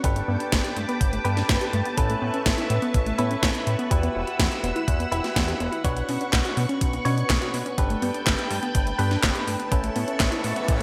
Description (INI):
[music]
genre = italo disco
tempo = 124 BPM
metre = 4/4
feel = straight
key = unclear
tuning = A4 = 441 Hz
[part]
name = string machine, full ensemble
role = sustained chords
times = 0.0-10.8 s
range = B4 to E6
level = -33 LUFS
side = equal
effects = ensemble chorus
[part]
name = direct-recorded clean electric guitar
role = stabs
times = 0.0-10.8 s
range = C#4 to C#5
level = -33 LUFS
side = equal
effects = digital delay
[part]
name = chorused synth bass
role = bass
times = 0.0-10.8 s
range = E1 to B2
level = -30 LUFS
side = equal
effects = none
[part]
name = electronic kick drum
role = drums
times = 0.0-10.8 s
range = none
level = -27 LUFS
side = equal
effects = none
[part]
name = house drum kit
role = drums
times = 0.0-10.8 s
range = handclaps, hi-hat, snare drum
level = -30 LUFS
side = equal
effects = gated reverb
[part]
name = unison pluck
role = arpeggios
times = 0.2-10.8 s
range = A3 to G4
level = -33 LUFS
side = equal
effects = digital delay
[part]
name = riser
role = sound effects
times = 10.3-10.8 s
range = none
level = -37 LUFS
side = equal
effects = none
[sound]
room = moderate lush hall reverb, RT60 1.8 s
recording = bright 1980s-style digital production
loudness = -24 LUFS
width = mono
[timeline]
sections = 0.0-10.8 A section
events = filter sweep on synth arpeggio sound 0.0-10.8; riser 10.3-10.8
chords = 0.0 Gadd9; 2.0 Aadd9; 3.9 Emadd9; 5.8 Bmadd9; 7.8 Gadd9; 9.7 Aadd9